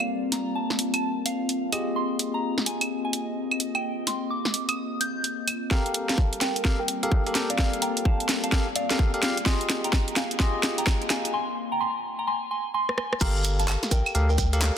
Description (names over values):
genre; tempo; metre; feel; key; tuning
UK garage, two-step garage; 128 BPM; 4/4; swing 63% on 16ths; G phrygian; A4 = 439 Hz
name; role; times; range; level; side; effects
soft synth bell; melody; 0.0-14.5 s; Bb4 to G6; -31 LUFS; equal; chorus, phaser, low-pass filter, tape echo
bell-like tine electric piano; stabs; 0.0-14.7 s; F4 to G5; -32 LUFS; equal; low-pass filter
garage drum kit; drums; 0.0-14.7 s; claves, crash cymbal, handclaps, hi-hat, rim click, snare drum; -27 LUFS; equal; overdrive
warbly tape-like pad; texture; 0.0-14.8 s; G3 to Eb5; -31 LUFS; left 2 dB; chorus, built-in reverb, sidechain pumping
electronic kick drum; drums; 5.7-14.5 s; none; -24 LUFS; equal; overdrive
saturated sub bass; bass; 13.2-14.7 s; G1 to D2; -23 LUFS; equal; none
shekere; percussion; 13.2-14.8 s; none; -36 LUFS; right 5 dB; none
room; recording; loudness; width
moderate lush hall reverb, RT60 1.9 s, digital ambience; dense, heavily limited modern master; -23 LUFS; side -8 dB against mid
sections
0.0-5.7 A section; 5.7-13.2 B section; 13.2-14.8 C section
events
build-up 5.7-13.2; drum fill 5.7-11.3, 12.9-13.2; filter sweep on synth bell 5.7-13.2; break 11.3-13.2; drop 13.2-14.8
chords
0.0 Gm9; 1.7 Fm9; 5.7 Gm9; 9.2 Fm9; 13.2 Gm9